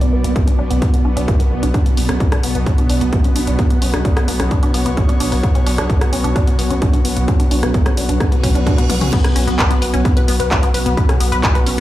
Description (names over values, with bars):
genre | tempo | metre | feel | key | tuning
driving peak-time techno | 130 BPM | 4/4 | straight | B minor | A4 = 440 Hz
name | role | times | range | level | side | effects
resonant blip pluck | riff | 0.0-11.7 s | B3 to B4 | -23 LUFS | left 1 dB | chorus, phaser, tube saturation, sidechain pumping, dub echo
swarming drone | drone | 0.0-11.8 s | B2 to B3 | -25 LUFS | right 1 dB | built-in reverb, sidechain pumping
punchy analog drum machine | drums | 0.0-11.8 s | crash cymbal, handclaps, hi-hat, rim click, toms | -23 LUFS | equal | none
airy breathy pad | texture | 0.0-11.8 s | B3 to D5 | -24 LUFS | equal | chorus, sidechain pumping
saturated sub bass | bass | 0.1-11.8 s | B1 | -20 LUFS | equal | overdrive, sidechain pumping, low-pass filter
electronic kick drum | drums | 0.4-11.5 s | none | -15 LUFS | equal | none
reverse cymbal | sound effects | 8.4-9.1 s | none | -32 LUFS | right 5 dB | none
room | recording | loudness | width
little or no reverb | played on a big sound system in a bare room, large studio reverb | -13 LUFS | side -14 dB against mid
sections
0.0-9.1 A section; 9.1-11.8 B section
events
filter sweep on synth arpeggio sound 0.0-9.1; reverse cymbal 8.4-9.1; drum fill 8.9; drop 9.1-11.8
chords
0.0 Bm